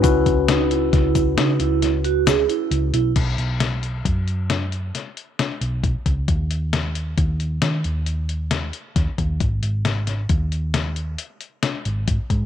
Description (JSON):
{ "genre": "progressive instrumental, band music in an uneven meter", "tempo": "135 BPM", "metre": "7/4", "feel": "straight", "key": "B major", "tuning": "A4 = 440 Hz", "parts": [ { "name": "bright tine electric piano", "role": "accompaniment", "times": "0.0-3.1 s", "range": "C#4 to B4", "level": "-23 LUFS", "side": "left 12 dB", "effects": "none" }, { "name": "vibraphone with medium mallets", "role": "arpeggios", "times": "0.0-3.1 s", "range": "D#4 to G#4", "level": "-21 LUFS", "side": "right 16 dB", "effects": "none" }, { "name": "hollow-body short-scale picked electric bass", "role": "bass", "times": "0.0-12.5 s", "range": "G#1 to D#3", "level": "-22 LUFS", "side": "equal", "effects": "none" }, { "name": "lo-fi sampler-style drum kit", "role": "drums", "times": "0.0-12.4 s", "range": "crash cymbal, hi-hat, kick drum, snare drum", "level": "-22 LUFS", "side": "left 3 dB", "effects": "none" }, { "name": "egg shaker", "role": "percussion", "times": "0.0-2.6 s", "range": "none", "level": "-38 LUFS", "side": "left 13 dB", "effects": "none" } ], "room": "digital ambience", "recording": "1960s-style stereo with parts hard left and right", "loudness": "-19 LUFS", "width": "side -9 dB against mid", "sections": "0.0-3.2 A section; 3.2-12.5 B section", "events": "kick and snare drop out 2.7-3.2", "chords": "0.0 C#m7; 3.2 B5; 6.3 N.C.; 9.4 G#5" }